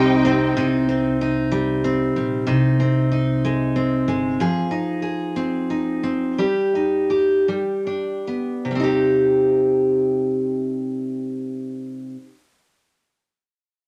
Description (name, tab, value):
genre	six-eight pop ballad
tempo	46-63 BPM (dotted quarters)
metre	6/8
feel	straight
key	C minor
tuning	A4 = 440 Hz
part	picked steel-string acoustic guitar	accompaniment	0.0-12.3 s	C3 to Ab4	-22 LUFS	equal	none
part	rich studio string section	sustained chords	0.0-0.6 s	Eb4 to G5	-27 LUFS	equal	none
part	picked steel-string acoustic guitar	arpeggios	0.0-1.1 s	G3 to Eb4	-24 LUFS	equal	none
part	upright bass	bass	0.0-4.4 s	G1 to C2	-27 LUFS	equal	none
room	wet studio reverb, RT60 0.5 s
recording	none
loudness	-21 LUFS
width	mono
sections	0.6-8.7 A section; 8.7-13.9 B section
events	slowing down 4.4-8.7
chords	0.0 Cm; 2.5 Ab/C; 4.4 Fm7; 6.4 Eb/G; 7.5 G; 8.7 Cm